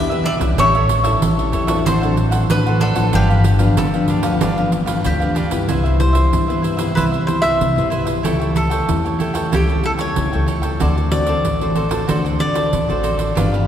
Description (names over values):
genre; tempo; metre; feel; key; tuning
samba and choro; 94 BPM; 4/4; straight; C major; A4 = 441 Hz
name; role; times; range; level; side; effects
bowl-back mandolin; second line; 0.0-5.7 s; G4 to E5; -22 LUFS; equal; none
cavaquinho; accompaniment; 0.0-13.7 s; D4 to G5; -24 LUFS; right 2 dB; none
nylon-string guitar; accompaniment; 0.0-13.7 s; G2 to B4; -22 LUFS; left 3 dB; none
upright bass; bass; 0.0-13.7 s; G1 to D3; -20 LUFS; equal; none
pandeiro; percussion; 0.1-13.7 s; none; -22 LUFS; right 3 dB; none
cavaquinho; melody; 6.0-13.3 s; G4 to E5; -22 LUFS; equal; none
room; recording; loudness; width
wet cathedral reverb, RT60 4.8 s; recorded in a church or concert hall; -15 LUFS; side -10 dB against mid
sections
0.0-5.7 A section; 5.7-13.7 B section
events
none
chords
0.0 Em7; 0.6 A7; 1.9 D7/A; 3.1 G7; 5.7 Cmaj7; 8.2 A7/C#; 10.8 D7